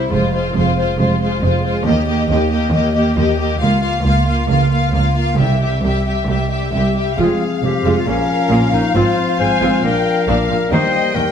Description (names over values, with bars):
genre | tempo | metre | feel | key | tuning
cinematic, heroic adventure film score | 137 BPM | 4/4 | straight | F minor | A4 = 440 Hz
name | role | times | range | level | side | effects
dark symphonic violin section | melody | 0.0-11.3 s | C5 to G5 | -22 LUFS | left 4 dB | none
rich symphonic violin section | second line | 0.0-11.3 s | E4 to Ab5 | -22 LUFS | left 4 dB | none
warm symphonic viola section | accompaniment | 0.0-11.2 s | G3 to F4 | -21 LUFS | right 2 dB | none
rich symphonic cello section | bass | 0.0-11.2 s | C2 to Eb3 | -20 LUFS | right 3 dB | none
rich symphonic double bass section | bass | 0.0-11.2 s | F1 to Eb2 | -20 LUFS | right 2 dB | none
timpani | percussion | 5.4-6.0 s | C3 | -22 LUFS | equal | none
clear clarinet | second line | 7.2-11.3 s | Db4 to C5 | -20 LUFS | left 2 dB | none
mellow French horn section | sustained chords | 7.2-11.3 s | F3 to D4 | -22 LUFS | left 4 dB | none
room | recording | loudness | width
wet recital hall reverb, RT60 1.4 s | none | -14 LUFS | side -8 dB against mid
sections
0.0-7.2 A section; 7.2-11.3 B section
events
build-up 0.0-7.2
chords
0.1 Fm; 1.9 Eb; 3.6 Bbm/Db; 5.4 C; 7.2 Fm; 8.1 Bbm; 8.9 Fm/Ab; 9.8 Bb; 10.7 Eb